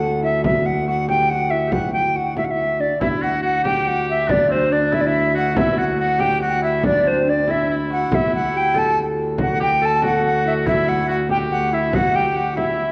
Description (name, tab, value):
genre	medieval dance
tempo	94 BPM (dotted quarters)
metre	6/8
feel	straight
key	D mixolydian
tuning	A4 = 440 Hz
part	tenor recorder	melody	0.0-12.9 s	C5 to A5	-22 LUFS	equal	none
part	concert harp	second line	0.0-12.9 s	C4 to A4	-28 LUFS	equal	none
part	warm viola da gamba	drone	0.0-12.9 s	D2	-28 LUFS	equal	none
part	frame drum	percussion	0.0-12.8 s	none	-28 LUFS	equal	none
part	clear shawm	second line	3.0-12.9 s	C4 to A4	-29 LUFS	equal	none
room	wet recital hall reverb, RT60 1.5 s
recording	worn, warbling old tape, cassette tape, warbly pitch drift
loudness	-19 LUFS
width	mono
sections	0.0-3.0 A section; 3.0-12.9 A section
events	none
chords	none